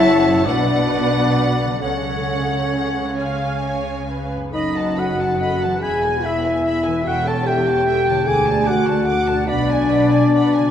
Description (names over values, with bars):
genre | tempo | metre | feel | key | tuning
classical | 43-51 BPM (dotted quarters) | 6/8 | rubato | unclear | A4 = 440 Hz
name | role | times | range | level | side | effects
rich studio violin section | melody | 0.0-10.7 s | F#5 to D6 | -28 LUFS | equal | none
silver concert flute | second line | 0.0-10.7 s | C#5 to A5 | -24 LUFS | left 2 dB | none
warm oboe | second line | 0.0-10.7 s | C#5 to A5 | -28 LUFS | right 2 dB | none
warm studio violin section | second line | 0.0-10.7 s | D#5 to A5 | -31 LUFS | left 3 dB | none
warm studio viola section | accompaniment | 0.0-10.7 s | G#4 to E#5 | -30 LUFS | right 3 dB | none
mellow French horn section | sustained chords | 0.0-10.7 s | C#4 to A4 | -20 LUFS | left 3 dB | none
concert harp | arpeggios | 0.0-10.7 s | F#2 to B4 | -32 LUFS | left 5 dB | none
rich studio double bass section | bass | 0.0-10.6 s | E1 to D2 | -25 LUFS | right 3 dB | none
warm studio cello section | bass | 0.0-10.6 s | D2 to C#3 | -26 LUFS | right 3 dB | none
room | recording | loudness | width
wet concert hall reverb, RT60 2.3 s | none | -16 LUFS | side -9 dB against mid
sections
0.0-10.7 A section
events
none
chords
0.5 Bm; 1.8 F#m/C#; 3.2 C#; 4.5 B7/F#; 5.8 E; 7.1 A7/E; 8.3 D; 9.5 G#m7b5/B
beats
0.47 | 1.82 3.18 | 4.54 5.82 | 7.06 8.26 | 9.48